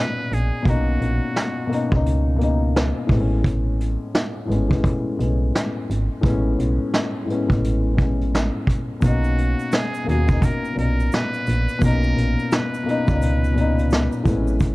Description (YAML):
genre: lo-fi hip hop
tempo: 86 BPM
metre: 4/4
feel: swing 62% on 16ths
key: B major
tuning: A4 = 439 Hz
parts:
  - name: trumpet with metal mute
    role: melody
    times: 0.0-2.1, 9.0-14.3 s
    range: F#4 to B4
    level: -29 LUFS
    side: right 1 dB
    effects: low-pass filter, analog delay
  - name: felt-muted upright piano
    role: accompaniment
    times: 0.0-14.7 s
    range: A2 to F#4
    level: -23 LUFS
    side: left 2 dB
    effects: cassette tape, low-pass filter
  - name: solid FM bass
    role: bass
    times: 0.3-14.7 s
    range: G#1 to D#2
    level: -21 LUFS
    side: right 1 dB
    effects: none
  - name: vintage brush drum kit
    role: drums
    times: 0.3-14.7 s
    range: hi-hat, kick drum, snare drum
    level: -22 LUFS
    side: equal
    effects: none
  - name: tube shaker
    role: percussion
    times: 9.0-14.7 s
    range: none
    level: -50 LUFS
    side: right 8 dB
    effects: none
room: small room ambience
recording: dark, warm production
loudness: -18 LUFS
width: side -20 dB against mid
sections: 0.0-14.7 A section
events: none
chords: 0.0 Bmaj9; 3.1 Amaj9; 9.0 Bmaj9